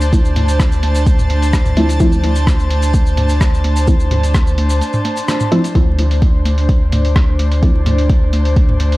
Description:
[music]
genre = dub techno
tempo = 128 BPM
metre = 4/4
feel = straight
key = D minor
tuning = A4 = 439 Hz
[part]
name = airy breathy pad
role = sustained chords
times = 0.0-9.0 s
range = D4 to A5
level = -22 LUFS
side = equal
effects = chorus, sidechain pumping
[part]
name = filtered dub chord stab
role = stabs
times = 0.0-9.0 s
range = F3 to E4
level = -19 LUFS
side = equal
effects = chorus, phaser, sidechain pumping, dub echo
[part]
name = soft dub sub bass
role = bass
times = 0.0-9.0 s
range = D2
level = -15 LUFS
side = equal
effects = sidechain pumping
[part]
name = lo-fi sampler-style drum kit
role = drums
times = 0.0-9.0 s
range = hi-hat, rim click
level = -25 LUFS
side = equal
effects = none
[part]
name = maracas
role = percussion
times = 0.0-5.7 s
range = none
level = -32 LUFS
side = left 1 dB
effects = none
[part]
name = drifting glass-harmonics texture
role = texture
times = 0.0-9.0 s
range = C5 to D5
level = -28 LUFS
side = right 1 dB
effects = chorus, built-in reverb, sidechain pumping
[part]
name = electronic kick drum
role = drums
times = 0.1-8.7 s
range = none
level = -13 LUFS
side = equal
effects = overdrive
[part]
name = electronic congas and toms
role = percussion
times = 0.1-8.9 s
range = none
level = -24 LUFS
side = equal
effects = sidechain pumping on perc, sidechain pumping on toms, dub echo
[sound]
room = digital ambience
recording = dry, gritty hardware recording, vinyl crackle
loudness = -11 LUFS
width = side -19 dB against mid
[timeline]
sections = 0.0-5.8 A section; 5.8-9.0 A section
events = filter sweep on synth stab 0.0-5.8, 5.8-9.0; break 4.8-5.8; band accent 5.3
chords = 0.0 Dm7

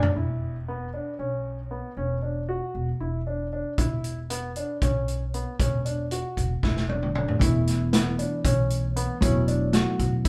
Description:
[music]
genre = progressive instrumental, band music in an uneven meter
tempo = 232 BPM (eighths)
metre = 7/8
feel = straight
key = unclear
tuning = A4 = 438 Hz
[part]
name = warm baby grand piano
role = arpeggios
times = 0.0-10.3 s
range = B3 to F#4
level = -33 LUFS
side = equal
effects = none
[part]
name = vintage drum kit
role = drums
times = 0.0-0.1, 3.8-10.3 s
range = hi-hat, kick drum, snare drum, toms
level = -28 LUFS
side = equal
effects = none
[part]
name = upright bass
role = bass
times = 0.2-10.3 s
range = E1 to B1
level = -31 LUFS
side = equal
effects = none
[part]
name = hollow-body jazz guitar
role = accompaniment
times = 7.4-10.3 s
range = E3 to E4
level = -31 LUFS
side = equal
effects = none
[sound]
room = moderate large studio reverb, RT60 0.9 s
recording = band playing live in one room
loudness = -26 LUFS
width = mono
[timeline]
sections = 0.2-7.4 A section; 7.4-10.3 B section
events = drum fill 0.0, 6.6-7.4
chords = 0.2 E5; 2.0 D/E; 3.8 E5; 5.6 D/E; 7.4 Esus4; 9.2 D6/E

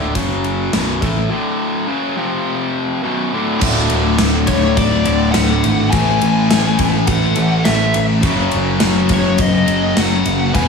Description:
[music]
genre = hard rock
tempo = 104 BPM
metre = 4/4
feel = straight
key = unclear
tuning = A4 = 439 Hz
[part]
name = overdriven electric guitar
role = riff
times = 0.0-10.7 s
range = B1 to A3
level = -17 LUFS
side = left 1 dB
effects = none
[part]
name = picked electric bass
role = bass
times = 0.0-10.7 s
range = B0 to A1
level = -20 LUFS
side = equal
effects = none
[part]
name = gated 80s drum kit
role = drums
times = 0.2-10.7 s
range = crash cymbal, kick drum, ride cymbal, snare drum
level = -19 LUFS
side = equal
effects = none
[part]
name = high-gain distorted guitar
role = riff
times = 3.6-10.7 s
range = D2 to A3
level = -21 LUFS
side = left 1 dB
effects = distortion
[part]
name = nasal lead guitar with a parked wah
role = melody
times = 4.5-10.7 s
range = C#5 to G#5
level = -20 LUFS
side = left 3 dB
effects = overdrive, tape echo
[sound]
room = light reverb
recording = small room ambience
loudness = -13 LUFS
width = side -5 dB against mid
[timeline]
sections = 0.0-3.6 A section; 3.6-10.7 B section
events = none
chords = 0.1 F#5; 0.7 B5; 1.3 D5; 1.9 F#5; 2.2 F5; 3.0 B5; 3.6 D; 5.9 A5; 8.2 F#5

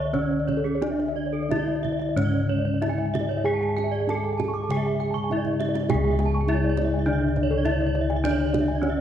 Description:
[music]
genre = Balinese gamelan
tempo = 87-103 BPM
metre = 4/4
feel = straight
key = C# pelog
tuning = A4 = 440 Hz
[part]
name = gamelan-type bronze metallophone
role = melody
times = 0.0-9.0 s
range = C#4 to C#5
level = -27 LUFS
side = right 1 dB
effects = none
[part]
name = gamelan-type bronze metallophone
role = arpeggios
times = 0.0-9.0 s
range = G#4-30c to D6+20c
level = -32 LUFS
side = right 6 dB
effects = none
[part]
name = gamelan-type bossed gongs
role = bass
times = 0.0-9.0 s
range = C#2 to G#4-30c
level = -26 LUFS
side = left 2 dB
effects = none
[part]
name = gamelan-type bronze metallophone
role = arpeggios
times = 0.1-9.0 s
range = A4-20c to C#6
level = -31 LUFS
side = left 4 dB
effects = none
[part]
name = kendang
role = percussion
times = 0.1-9.0 s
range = none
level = -33 LUFS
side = right 6 dB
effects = none
[part]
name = gamelan-type bronze metallophone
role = accompaniment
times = 0.8-9.0 s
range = C#3 to G#3-30c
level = -33 LUFS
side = equal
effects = none
[sound]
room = moderate scoring stage reverb, RT60 1.7 s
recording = worn, warbling old tape, cassette tape, warbly pitch drift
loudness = -22 LUFS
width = side -10 dB against mid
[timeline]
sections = 0.0-5.9 A section; 5.9-9.0 B section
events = drum fill 5.2-5.9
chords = none

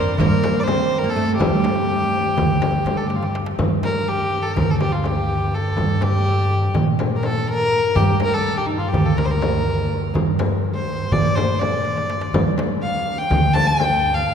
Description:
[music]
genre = Turkish makam ensemble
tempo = 247 BPM (eighths)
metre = 9/8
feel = straight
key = G makam nihavent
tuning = A4 = 440 Hz
[part]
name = dark violin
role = melody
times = 0.0-14.3 s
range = Eb4 to A5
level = -22 LUFS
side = left 1 dB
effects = none
[part]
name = oud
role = second line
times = 0.0-2.9 s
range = G3 to C4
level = -25 LUFS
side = right 3 dB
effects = none
[part]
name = upright bass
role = bass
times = 0.0-14.2 s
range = D2 to Bb2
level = -23 LUFS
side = equal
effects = none
[part]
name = darbuka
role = percussion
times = 0.1-14.3 s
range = none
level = -25 LUFS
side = right 4 dB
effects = none
[part]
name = frame drum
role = percussion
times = 0.2-13.9 s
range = none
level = -25 LUFS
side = left 2 dB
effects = none
[part]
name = muted double bass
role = drone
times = 3.6-14.3 s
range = G2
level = -27 LUFS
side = left 1 dB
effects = none
[sound]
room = wet cathedral reverb, RT60 4.5 s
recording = recorded in a church or concert hall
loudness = -17 LUFS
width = side -7 dB against mid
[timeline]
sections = 0.0-3.6 A section; 3.6-14.3 B section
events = drum fill 3.1-3.6, 11.9-12.3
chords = none

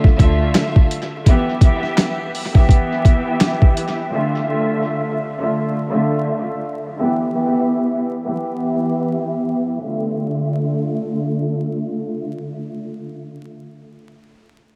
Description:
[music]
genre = hip hop, boom-bap hip-hop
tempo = 84 BPM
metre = 4/4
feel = swing 59% on 16ths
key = D dorian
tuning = A4 = 440 Hz
[part]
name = dusty soul sampler-style drum kit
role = drums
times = 0.0-4.0 s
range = handclaps, hi-hat, kick drum, snare drum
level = -15 LUFS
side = equal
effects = overdrive
[part]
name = muted symphonic string section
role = accompaniment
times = 0.2-13.4 s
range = D3 to E5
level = -22 LUFS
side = equal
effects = high-pass filter, low-pass filter, tape echo
[part]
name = upright bass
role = bass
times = 0.2-0.5 s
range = D2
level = -20 LUFS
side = equal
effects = none
[sound]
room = light reverb, small room reverb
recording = echo-heavy mix, vinyl crackle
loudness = -19 LUFS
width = mono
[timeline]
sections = 0.0-9.8 A section; 9.8-12.7 B section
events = filter sweep on string section 0.0-9.8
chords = 0.0 Dmadd9; 1.3 Em; 4.1 Dmadd9; 7.0 Em; 9.8 Dmadd9

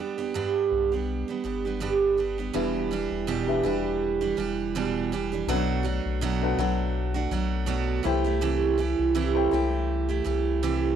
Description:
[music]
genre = acoustic pop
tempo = 82 BPM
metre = 4/4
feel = swing 55% on 16ths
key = unclear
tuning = A4 = 445 Hz
[part]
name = picked steel-string acoustic guitar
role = accompaniment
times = 0.0-11.0 s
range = E2 to G4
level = -25 LUFS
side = right 6 dB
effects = none
[part]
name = round analog bass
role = bass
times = 0.7-10.9 s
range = E1 to C2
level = -30 LUFS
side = left 3 dB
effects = none
[part]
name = felt-muted upright piano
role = accompaniment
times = 2.5-11.0 s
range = C#4 to G5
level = -33 LUFS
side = left 14 dB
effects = none
[sound]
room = moderate booth ambience, RT60 0.2 s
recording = home recording on cassette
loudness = -24 LUFS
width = side -8 dB against mid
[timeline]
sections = 0.0-2.5 A section; 2.5-11.0 B section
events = none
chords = 0.0 G; 2.5 Em7; 5.5 Bm7; 8.1 Am7/C

